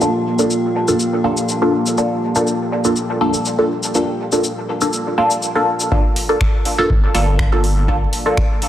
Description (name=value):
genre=dub techno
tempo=122 BPM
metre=4/4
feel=swing 53% on 16ths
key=G minor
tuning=A4 = 441 Hz
part: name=deep dark ambient pad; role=sustained chords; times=0.0-8.7 s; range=Bb3 to G5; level=-23 LUFS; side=equal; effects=chorus, built-in reverb, sidechain pumping
part: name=filtered dub chord stab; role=stabs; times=0.0-8.3 s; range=Bb3 to A4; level=-17 LUFS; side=equal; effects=phaser, dub echo
part: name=booming analog drum machine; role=drums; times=0.0-8.7 s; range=finger snaps, hi-hat, shaker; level=-24 LUFS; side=left 1 dB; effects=soft clipping on snare
part: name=metallic inharmonic drone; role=texture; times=0.0-5.9 s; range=F4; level=-28 LUFS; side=right 1 dB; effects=chorus, built-in reverb, phaser, sidechain pumping
part: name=warm sub bass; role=bass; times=5.9-8.1 s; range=G1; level=-18 LUFS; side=equal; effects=sidechain pumping
part: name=electronic kick drum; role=drums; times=5.9-8.5 s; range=none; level=-18 LUFS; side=equal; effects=none
room=moderate echo chamber reverb, RT60 2.3 s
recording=dense, heavily limited modern master, vinyl crackle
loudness=-15 LUFS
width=side -11 dB against mid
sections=0.0-5.9 A section; 5.9-8.7 B section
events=filter sweep on synth stab 0.0-5.9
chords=0.0 Gm7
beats=| 0.01 0.51 1.00 1.49 | 1.98 2.47 2.97 3.46 | 3.95 4.44 4.93 5.42 | 5.92 6.41 6.90 7.39 | 7.88 8.38